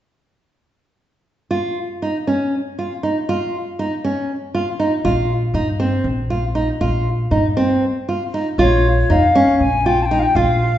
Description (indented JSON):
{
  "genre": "contemporary instrumental, contemporary",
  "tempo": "238 BPM (eighths)",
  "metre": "7/8",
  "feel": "straight",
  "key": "unclear",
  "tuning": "A4 = 440 Hz",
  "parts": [
    { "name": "nylon-string guitar", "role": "arpeggios", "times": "1.5-10.6 s", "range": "C4 to F4", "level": "-18 LUFS", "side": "right 1 dB", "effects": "none" },
    { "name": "upright bass", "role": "bass", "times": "5.0-10.8 s", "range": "Bb1 to G2", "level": "-19 LUFS", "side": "equal", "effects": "none" },
    { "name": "bright wooden flute", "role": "melody", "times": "8.6-10.8 s", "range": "Db5 to A5", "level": "-17 LUFS", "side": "left 2 dB", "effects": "none" }
  ],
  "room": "wet recital hall reverb, RT60 1.4 s",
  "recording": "recorded in a church or concert hall, nothing above 7.9 kHz",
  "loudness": "-16 LUFS",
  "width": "side -12 dB against mid",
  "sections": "1.5-8.6 A section; 8.6-10.8 B section",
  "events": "break 7.8-8.6",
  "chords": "1.5 Dbadd9; 5.0 Cm7/Bb; 8.6 Bbm"
}